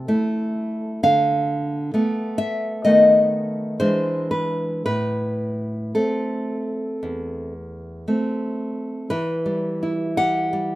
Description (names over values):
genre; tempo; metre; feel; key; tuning
romantic piece for solo classical guitar; 54-67 BPM; 4/4; rubato; A minor; A4 = 439 Hz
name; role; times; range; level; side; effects
nylon-string guitar; solo; 0.0-10.8 s; E2 to F#5; -20 LUFS; equal; none
room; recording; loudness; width
wet studio ambience, RT60 0.5 s; rough home demo mix; -19 LUFS; side -16 dB against mid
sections
0.0-9.1 A section; 9.1-10.8 B section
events
none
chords
0.0 A5; 1.0 Bm7b5/D; 2.9 B7/D#; 3.8 E7; 4.9 Am; 9.1 Em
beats
0.09 | 1.04 1.95 2.87 3.82 | 4.88 5.96 7.03 8.09 | 9.12 10.19